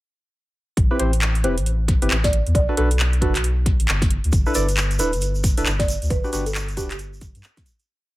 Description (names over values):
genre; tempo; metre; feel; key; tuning
UK garage, two-step garage; 135 BPM; 4/4; swing 61% on 16ths; A dorian; A4 = 440 Hz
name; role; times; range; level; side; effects
soft dub sub bass; bass; 0.8-7.4 s; D1 to G2; -22 LUFS; equal; none
electronic kick drum; drums; 0.8-7.6 s; none; -20 LUFS; equal; none
house drum kit; drums; 0.8-7.9 s; handclaps, hi-hat, snare drum; -25 LUFS; equal; none
percussive organ stab; stabs; 0.9-6.9 s; C4 to D5; -26 LUFS; equal; chorus
buzzing marimba with soft mallets; melody; 1.0-7.0 s; F#4 to D5; -28 LUFS; right 2 dB; tape echo
egg shaker; percussion; 4.3-7.9 s; none; -32 LUFS; right 2 dB; none
room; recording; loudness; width
digital ambience; none; -18 LUFS; side -18 dB against mid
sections
0.8-7.9 drop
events
drop 0.8-7.9; fade-out 5.5-7.9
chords
0.8 Am7; 2.5 Bm7; 4.1 G6; 6.1 Dadd11